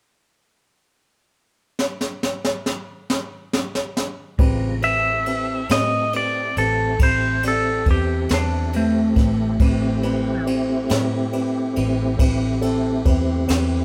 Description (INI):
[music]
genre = slow blues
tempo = 46 BPM (dotted quarters)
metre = 12/8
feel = straight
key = A minor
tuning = A4 = 439 Hz
[part]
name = jazz brush drum kit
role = drums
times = 1.8-13.7 s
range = kick drum, ride cymbal, snare drum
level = -25 LUFS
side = equal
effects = none
[part]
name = dark grand piano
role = accompaniment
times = 4.4-13.8 s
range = C4 to B5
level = -28 LUFS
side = equal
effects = none
[part]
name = tonewheel organ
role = sustained chords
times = 4.4-13.8 s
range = C#3 to Bb5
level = -29 LUFS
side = equal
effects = slow rotary speaker, overdrive, chorus vibrato
[part]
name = vintage muted fingered electric bass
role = bass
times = 4.4-13.8 s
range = A1 to A2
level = -27 LUFS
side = equal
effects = none
[part]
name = clean lap steel guitar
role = melody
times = 4.8-10.4 s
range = A3 to E5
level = -23 LUFS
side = equal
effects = none
[sound]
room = moderate stone room reverb, RT60 1.4 s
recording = band playing live in one room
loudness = -21 LUFS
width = mono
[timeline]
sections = 0.0-4.4 A section; 4.4-13.8 B section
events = drum fill 1.8-4.4; electric slide guitar solo 4.4-13.8; grand piano fill 13.5-13.8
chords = 0.0 N.C.; 4.4 Am7